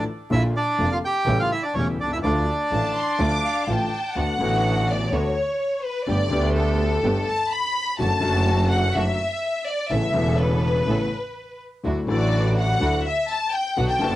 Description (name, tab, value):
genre	tango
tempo	125 BPM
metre	4/4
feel	rubato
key	D minor, D major from 4.2 s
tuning	A4 = 440 Hz
part	bandoneon	melody	0.0-3.6 s	C#4 to G5	-24 LUFS	right 1 dB	cassette tape, analog delay
part	warm baby grand piano	accompaniment	0.0-14.2 s	E1 to G4	-26 LUFS	left 3 dB	cassette tape
part	rich symphonic string section	stabs	0.0-14.2 s	A3 to A4	-31 LUFS	right 4 dB	cassette tape
part	clear double bass	bass	0.0-14.2 s	E1 to D2	-24 LUFS	right 1 dB	none
part	rich studio violin section	second line	2.7-14.2 s	A4 to D6	-24 LUFS	left 2 dB	cassette tape
room	light reverb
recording	home recording on cassette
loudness	-20 LUFS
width	side -15 dB against mid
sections	0.0-4.2 A section; 4.2-14.2 B section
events	violin section solo 4.2-14.2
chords	0.3 Bb; 1.3 A7; 2.2 Dm; 4.2 D6; 6.1 Gadd9; 8.0 D/F#; 9.9 Aadd9; 11.8 Dadd9